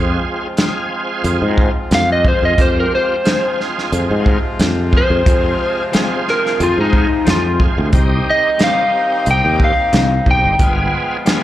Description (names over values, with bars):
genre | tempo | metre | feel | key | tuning
straight-eighth soul blues | 90 BPM | 4/4 | swing 53% on 16ths | unclear | A4 = 440 Hz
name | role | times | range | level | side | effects
bright tonewheel organ | accompaniment | 0.0-11.4 s | B3 to Ab4 | -22 LUFS | right 3 dB | slow rotary speaker, overdrive, chorus vibrato, slapback echo
brilliant horn section | sustained chords | 0.0-11.4 s | C3 to F4 | -25 LUFS | equal | none
sustaining fretless electric bass | bass | 0.0-10.9 s | G1 to Ab2 | -17 LUFS | left 1 dB | none
warm soul drum kit | drums | 0.6-11.4 s | hi-hat, kick drum, snare drum | -16 LUFS | equal | none
electric slide guitar | melody | 1.9-11.4 s | Eb4 to G5 | -16 LUFS | left 1 dB | slapback echo, tape echo
electric guitar through a small old amp | stabs | 5.9-11.4 s | C3 to Ab4 | -23 LUFS | left 7 dB | slapback echo
room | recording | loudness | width
light reverb | live gig heard through the venue's PA, club reverb | -13 LUFS | side -13 dB against mid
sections
0.0-11.4 A section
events
electric slide guitar solo 0.0-11.4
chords
0.0 Fm; 7.9 Cm; 10.6 G7b9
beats
0.58 1.25 1.92 | 2.59 3.25 3.92 4.59 | 5.26 5.93 6.60 7.26 | 7.93 8.60 9.27 9.93 | 10.60 11.27